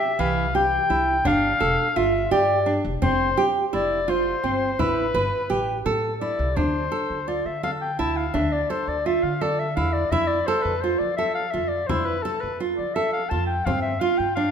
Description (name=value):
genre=contemporary instrumental, chamber music in an uneven meter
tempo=169 BPM (eighths)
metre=5/8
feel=straight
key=D dorian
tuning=A4 = 442 Hz
part: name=dark soprano saxophone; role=melody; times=0.0-14.5 s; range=A4 to A5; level=-24 LUFS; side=left 4 dB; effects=none
part: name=nylon-string guitar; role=arpeggios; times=0.0-14.5 s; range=E3 to B4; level=-24 LUFS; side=right 4 dB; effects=none
part: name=upright bass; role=bass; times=0.2-14.5 s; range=E1 to F3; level=-30 LUFS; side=right 1 dB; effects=none
part: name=frame drum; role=percussion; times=0.2-14.0 s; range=none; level=-32 LUFS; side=left 4 dB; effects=none
room=moderate recital hall reverb, RT60 1.7 s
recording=minimal, uncompressed stereo recording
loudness=-21 LUFS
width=side -7 dB against mid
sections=0.0-6.6 A section; 6.6-14.5 B section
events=none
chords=0.0 C; 1.3 Gsus2; 3.0 Fsus2; 4.8 Asus2; 6.6 Dmadd9; 10.1 Fmaj7; 13.7 G7sus4